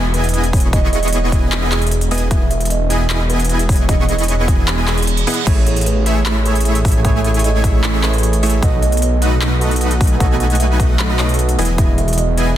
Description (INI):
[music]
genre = future bass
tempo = 152 BPM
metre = 4/4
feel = half-time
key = E major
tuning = A4 = 438 Hz
[part]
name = ethereal airy pad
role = sustained chords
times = 0.1-12.6 s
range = C#3 to D#5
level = -29 LUFS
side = left 1 dB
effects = none
[part]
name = dense compressed supersaw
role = riff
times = 0.0-12.6 s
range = A3 to C#6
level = -21 LUFS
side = right 1 dB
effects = sidechain pumping
[part]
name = wide detuned saw bass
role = bass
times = 0.0-12.6 s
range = E1 to B1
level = -17 LUFS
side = equal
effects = chorus, sidechain pumping
[part]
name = kalimba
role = melody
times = 0.1-12.3 s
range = G#4 to F#5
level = -25 LUFS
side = right 5 dB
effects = sidechain pumping, ping-pong delay
[part]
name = big-room dance drum kit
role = drums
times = 0.1-12.5 s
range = crash cymbal, handclaps, hi-hat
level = -23 LUFS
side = equal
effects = none
[part]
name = electronic kick drum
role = drums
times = 0.5-11.9 s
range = none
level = -15 LUFS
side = equal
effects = none
[part]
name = reverse cymbal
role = sound effects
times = 4.9-5.5 s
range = none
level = -26 LUFS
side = right 8 dB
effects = none
[part]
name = barky tine electric piano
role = accompaniment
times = 5.4-12.6 s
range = E3 to D#5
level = -24 LUFS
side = right 5 dB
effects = medium tremolo, sidechain pumping, ping-pong delay
[sound]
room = digital ambience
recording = dense, heavily limited modern master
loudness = -13 LUFS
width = side -12 dB against mid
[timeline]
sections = 0.0-12.6 A section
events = reverse cymbal 4.9-5.5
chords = 0.0 Emaj7; 5.5 Amaj7; 8.6 B7; 11.6 Emaj7